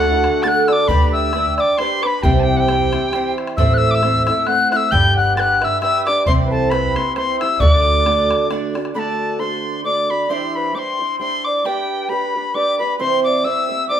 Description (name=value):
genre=celtic folk, Celtic waltz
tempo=134 BPM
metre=3/4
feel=swing 55% on 8ths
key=D mixolydian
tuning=A4 = 439 Hz
part: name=reedy tin whistle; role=melody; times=0.0-14.0 s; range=F#5 to A6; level=-19 LUFS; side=left 2 dB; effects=none
part: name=mellow accordion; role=second line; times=0.0-14.0 s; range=E4 to G5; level=-21 LUFS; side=equal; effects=none
part: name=fingerpicked twelve-string acoustic guitar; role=accompaniment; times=0.0-14.0 s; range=A2 to D5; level=-22 LUFS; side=right 3 dB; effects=none
part: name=upright bass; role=bass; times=0.0-8.3 s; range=G1 to D2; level=-19 LUFS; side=equal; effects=none
part: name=bodhran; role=percussion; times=0.1-8.9 s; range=none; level=-24 LUFS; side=equal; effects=none
room=wet large studio reverb, RT60 1.1 s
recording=band playing live in one room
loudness=-15 LUFS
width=side -9 dB against mid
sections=0.0-9.0 A section; 9.0-14.0 B section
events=none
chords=0.0 D; 0.9 G/D; 2.2 C; 3.6 Am; 4.9 G; 6.3 C; 7.6 D; 10.3 Cadd9/E; 11.7 G; 13.0 C